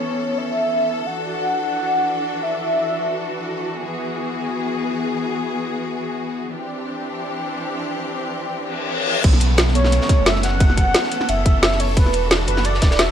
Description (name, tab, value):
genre	liquid drum and bass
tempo	176 BPM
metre	4/4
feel	swing 54% on 16ths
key	B minor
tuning	A4 = 440 Hz
part	warm velvety synth lead	melody	0.0-3.6, 9.8-13.1 s	B4 to F#5	-21 LUFS	equal	chorus, digital delay
part	clear studio string section	sustained chords	0.0-13.1 s	E3 to A4	-25 LUFS	left 2 dB	sidechain pumping
part	reverse cymbal and downlifter	sound effects	8.7-12.0 s	none	-25 LUFS	left 1 dB	none
part	warm sub bass	bass	9.2-13.1 s	E1 to B1	-20 LUFS	equal	none
part	crunchy breakbeat drum kit	drums	9.2-13.1 s	hi-hat, ride cymbal, snare drum	-27 LUFS	equal	high-pass filter on cymbals, high-pass filter on hats, high-pass filter on snare, high-pass filter on room
part	drum and bass drum kit	drums	9.2-13.1 s	crash cymbal, hi-hat, snare drum	-19 LUFS	equal	none
part	electronic kick drum	drums	9.2-12.9 s	none	-15 LUFS	equal	none
room	moderate digital room reverb, RT60 1.1 s, small room ambience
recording	none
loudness	-18 LUFS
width	side -9 dB against mid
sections	0.0-9.2 A section; 9.2-13.1 B section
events	reverse cymbal 8.7-9.2; drop 9.2-13.1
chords	0.0 B9sus4; 1.1 E9sus4; 3.8 F#9sus4; 6.5 D9sus4; 9.2 B9sus4; 12.0 E9sus4